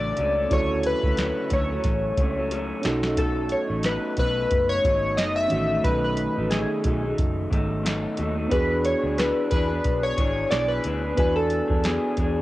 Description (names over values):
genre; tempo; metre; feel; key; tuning
indie pop, bedroom pop; 90 BPM; 4/4; swing 55% on 16ths; unclear; A4 = 439 Hz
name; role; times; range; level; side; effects
warm analog keys; melody; 0.0-12.4 s; G#4 to E5; -25 LUFS; left 1 dB; lush chorus, cassette tape
electric guitar through a small old amp; accompaniment; 0.0-12.4 s; B2 to G#4; -29 LUFS; left 2 dB; lush chorus, vibrato effect, cassette tape
mellow reed electric piano; accompaniment; 0.0-12.4 s; C#3 to G#5; -30 LUFS; right 3 dB; cassette tape
vintage muted fingered electric bass; bass; 0.0-12.4 s; F#1 to E2; -30 LUFS; equal; none
soft vintage rhythm box; drums; 0.2-12.4 s; hi-hat, kick drum, snare drum; -26 LUFS; equal; cassette tape
room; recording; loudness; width
light reverb; home recording on cassette; -21 LUFS; side -16 dB against mid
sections
0.0-12.4 A section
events
drum fill 2.5-3.2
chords
0.0 Dmaj7; 2.8 B7; 8.5 E7